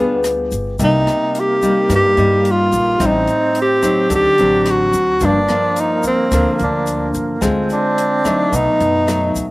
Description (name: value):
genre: bossa nova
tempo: 109 BPM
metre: 4/4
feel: straight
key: C minor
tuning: A4 = 440 Hz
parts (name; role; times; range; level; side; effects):
- breathy tenor saxophone; melody; 0.0-9.4 s; B3 to G4; -15 LUFS; equal; none
- alto flute; second line; 0.0-9.4 s; Bb3 to D4; -23 LUFS; right 3 dB; slapback echo
- nylon-string guitar; accompaniment; 0.0-9.5 s; G2 to Ab4; -19 LUFS; left 2 dB; slapback echo
- upright bass; bass; 0.0-9.5 s; G1 to G2; -22 LUFS; equal; none
- open jazz drum kit; drums; 0.2-9.5 s; hi-hat, kick drum, rim click; -27 LUFS; equal; none
- egg shaker; percussion; 0.2-9.5 s; none; -32 LUFS; left 5 dB; none
room: little or no reverb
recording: recorded outdoors, with no room sound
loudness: -13 LUFS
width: side -20 dB against mid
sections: 0.0-9.5 A section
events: none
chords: 0.0 G7b9; 0.8 Cm7; 3.0 Am7b5; 4.1 D7b9; 5.2 Gm7; 7.4 Dm7b5; 8.5 B7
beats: 0.24 | 0.80 1.35 1.90 2.45 | 3.01 3.56 4.11 4.66 | 5.21 5.77 6.32 6.87 | 7.42 7.98 8.53 9.08